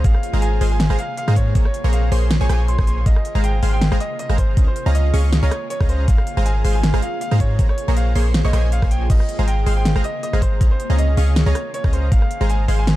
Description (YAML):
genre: future bass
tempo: 159 BPM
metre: 4/4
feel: swing 54% on 16ths, half-time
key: Ab major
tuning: A4 = 441 Hz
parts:
  - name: bright concert grand piano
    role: melody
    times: 0.0-13.0 s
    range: C5 to C6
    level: -28 LUFS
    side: right 1 dB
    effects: sidechain pumping, tape echo
  - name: ethereal airy pad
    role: sustained chords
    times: 0.0-13.0 s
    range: C3 to Ab4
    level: -32 LUFS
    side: left 1 dB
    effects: ensemble chorus, built-in reverb, phaser, sidechain pumping
  - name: supersaw stab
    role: riff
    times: 0.0-12.9 s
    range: Ab3 to Db6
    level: -26 LUFS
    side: right 1 dB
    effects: sidechain pumping
  - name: warm 808-style bass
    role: bass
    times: 0.0-13.0 s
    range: Ab1 to Ab2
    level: -17 LUFS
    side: equal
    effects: sidechain pumping
  - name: electronic kick drum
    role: drums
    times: 0.0-12.2 s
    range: none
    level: -17 LUFS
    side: equal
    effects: none
  - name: pop drum kit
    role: drums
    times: 0.0-13.0 s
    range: crash cymbal, hi-hat, rim click, snare drum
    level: -24 LUFS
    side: equal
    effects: none
room: digital ambience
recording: dark, warm production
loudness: -16 LUFS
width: side -16 dB against mid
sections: 0.0-13.0 A section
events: none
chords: 0.0 Ab69; 1.6 Bbm7; 3.1 Ab69; 4.6 Db6; 6.1 Ab69; 7.6 Bbm7; 9.1 Ab69; 10.6 Db6; 12.1 Ab69